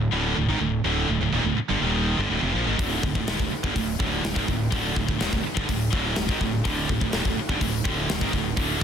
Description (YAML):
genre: heavy metal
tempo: 124 BPM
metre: 4/4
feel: straight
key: unclear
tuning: A4 = 440 Hz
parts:
  - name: high-gain distorted guitar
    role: riff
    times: 0.0-8.8 s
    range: D2 to F3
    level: -26 LUFS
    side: right 8 dB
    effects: distortion
  - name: scooped high-gain guitar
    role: riff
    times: 0.0-8.8 s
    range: D2 to F3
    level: -28 LUFS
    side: left 12 dB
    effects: distortion
  - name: fuzz fingered electric bass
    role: bass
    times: 0.0-8.8 s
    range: D1 to Bb1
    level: -29 LUFS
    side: left 1 dB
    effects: overdrive
  - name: big rock drum kit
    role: drums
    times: 2.8-8.8 s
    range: hi-hat, kick drum, snare drum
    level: -27 LUFS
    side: left 1 dB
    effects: none
room: studio reverb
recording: dense, heavily limited modern master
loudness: -22 LUFS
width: side -8 dB against mid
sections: 0.0-8.8 A section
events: none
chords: 0.0 D5